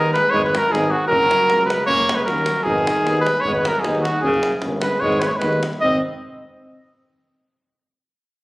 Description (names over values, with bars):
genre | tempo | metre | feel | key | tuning
balkan folk, Balkan brass band | 153 BPM | 2/4 | straight | G# minor | A4 = 440 Hz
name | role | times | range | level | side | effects
warm cornet | melody | 0.0-6.0 s | F#4 to D#5 | -18 LUFS | equal | none
mellow alto saxophone | second line | 0.0-6.0 s | C#3 to B#3 | -25 LUFS | equal | none
mellow trombone | accompaniment | 0.0-6.0 s | A#3 to B#3 | -31 LUFS | right 1 dB | none
warm euphonium | accompaniment | 0.0-6.0 s | C#4 to D#4 | -30 LUFS | left 1 dB | none
mellow tuba | bass | 0.0-6.0 s | F#1 to D#2 | -27 LUFS | equal | none
davul | percussion | 0.1-6.0 s | none | -29 LUFS | equal | none
room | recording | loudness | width
moderate recital hall reverb, RT60 1.5 s | recorded on a phone in the room, club reverb | -16 LUFS | side -21 dB against mid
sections
0.0-5.8 A section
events
none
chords
0.0 G#m; 1.1 F#; 2.7 G#m; 4.2 F#; 5.0 G#m; 5.8 G#